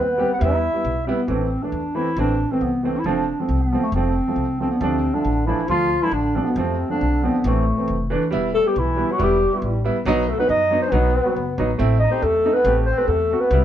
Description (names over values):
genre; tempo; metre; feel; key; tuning
klezmer; 137 BPM; 2/4; straight; A minor, E harmonic minor from 8.3 s; A4 = 440 Hz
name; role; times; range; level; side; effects
dark clarinet; melody; 0.0-13.6 s; A3 to F#5; -21 LUFS; equal; none
clear trombone; second line; 0.0-1.1, 4.7-13.6 s; A2 to E4; -27 LUFS; left 2 dB; none
upright bass; bass; 0.0-13.6 s; E1 to F#2; -23 LUFS; equal; none
warm upright piano; accompaniment; 0.2-13.6 s; E3 to G4; -24 LUFS; right 3 dB; none
room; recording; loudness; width
moderate studio reverb, RT60 0.8 s; band playing live in one room; -18 LUFS; side -10 dB against mid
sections
0.0-1.3 A section; 1.3-8.3 B section; 8.3-13.6 C section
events
none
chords
0.4 Em; 1.3 Am; 3.1 F; 4.8 Dm; 6.6 F; 7.4 Am; 8.3 Em; 10.1 B; 11.8 Am